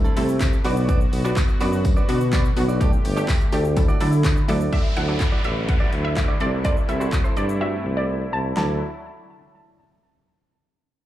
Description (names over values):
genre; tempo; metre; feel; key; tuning
dance-pop; 125 BPM; 4/4; straight; D mixolydian; A4 = 444 Hz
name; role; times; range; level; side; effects
wide unison pluck; accompaniment; 0.0-8.8 s; F#3 to A4; -28 LUFS; equal; sidechain pumping, low-pass filter, slapback echo
warm analog pad; sustained chords; 0.0-8.8 s; C3 to G4; -33 LUFS; left 2 dB; chorus, sidechain pumping, low-pass filter
direct-recorded clean electric guitar; riff; 0.0-8.7 s; C4 to D5; -31 LUFS; right 4 dB; lush chorus, low-pass filter, slapback echo
warm tuba; bass; 0.0-8.8 s; G1 to D3; -23 LUFS; equal; sidechain pumping
pop drum kit; drums; 0.0-8.7 s; handclaps, hi-hat, kick drum, shaker, snare drum; -21 LUFS; equal; none
tambourine; percussion; 0.2-4.6 s; none; -42 LUFS; left 3 dB; none
wide unison pluck; melody; 4.7-8.8 s; D5 to A5; -29 LUFS; right 1 dB; sidechain pumping, low-pass filter, slapback echo, ping-pong delay
downlifter; sound effects; 4.7-8.6 s; none; -33 LUFS; equal; slapback echo
room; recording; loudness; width
little or no reverb; live gig heard through the venue's PA, club reverb; -18 LUFS; side -13 dB against mid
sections
0.0-4.7 A section; 4.7-8.6 B section; 8.6-10.5 C section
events
break 7.6-8.6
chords
0.0 C6; 0.6 Bm; 2.8 Gsus2; 3.8 Dadd9; 6.4 C6; 8.6 Dadd9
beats
0.41 | 0.89 1.37 1.85 2.33 | 2.81 3.29 3.77 4.25 | 4.73 5.21 5.69 6.17 | 6.65 7.13 7.61 8.09 | 8.57